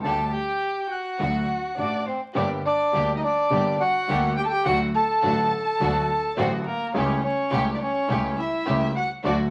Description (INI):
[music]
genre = tango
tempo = 104 BPM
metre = 4/4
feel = rubato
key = G harmonic minor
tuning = A4 = 440 Hz
[part]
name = bandoneon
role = melody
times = 0.0-9.4 s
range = Bb3 to A5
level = -28 LUFS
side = equal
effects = none
[part]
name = warm violin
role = second line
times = 0.0-9.4 s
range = F#4 to A5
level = -31 LUFS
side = equal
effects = none
[part]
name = warm upright piano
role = accompaniment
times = 0.0-9.5 s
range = G1 to G4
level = -30 LUFS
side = equal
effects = none
[part]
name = dark studio string section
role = stabs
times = 0.0-9.5 s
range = A3 to G4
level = -33 LUFS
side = equal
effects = none
[part]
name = dark double bass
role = bass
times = 0.0-9.5 s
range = G1 to D2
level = -35 LUFS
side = equal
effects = none
[sound]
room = moderate studio reverb, RT60 0.7 s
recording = vinyl crackle, nothing above 10.8 kHz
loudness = -24 LUFS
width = mono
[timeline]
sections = 0.0-2.4 A section; 2.4-9.5 B section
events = none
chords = 0.0 Dsus4; 1.2 D; 2.4 Gm; 4.7 D; 6.9 A7/C#